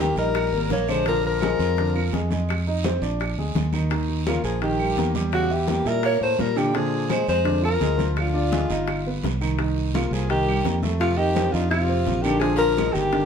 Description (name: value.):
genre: Afro-Cuban jazz.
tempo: 169 BPM.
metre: 4/4.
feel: straight.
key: Bb mixolydian.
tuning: A4 = 440 Hz.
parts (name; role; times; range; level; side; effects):
clear alto saxophone; melody; 0.0-13.3 s; F4 to Db5; -24 LUFS; left 1 dB; plate reverb.
clear tenor saxophone; second line; 0.0-13.3 s; C3 to Bb3; -30 LUFS; left 4 dB; none.
warm grand piano; accompaniment; 0.0-13.3 s; D3 to E5; -28 LUFS; right 2 dB; none.
fingered electric bass; bass; 0.0-13.3 s; G1 to Bb2; -25 LUFS; equal; none.
bongos; percussion; 0.0-13.3 s; none; -33 LUFS; left 3 dB; none.
congas; percussion; 0.0-13.3 s; none; -31 LUFS; left 2 dB; none.
guiro; percussion; 0.2-13.3 s; none; -38 LUFS; right 5 dB; none.
claves; percussion; 0.3-13.0 s; none; -37 LUFS; right 10 dB; none.
room: moderate studio reverb, RT60 0.7 s.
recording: heard from further back in the room.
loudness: -20 LUFS.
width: side -7 dB against mid.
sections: 0.0-13.3 A section.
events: none.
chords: 0.0 Eb; 1.1 Bb7; 2.5 Fm7; 3.2 Bb7; 3.9 Eb; 5.3 Edim; 6.7 Bb9; 8.2 Ddim; 8.9 Gaug7; 9.6 Cm7; 11.0 F9; 12.4 Bb7.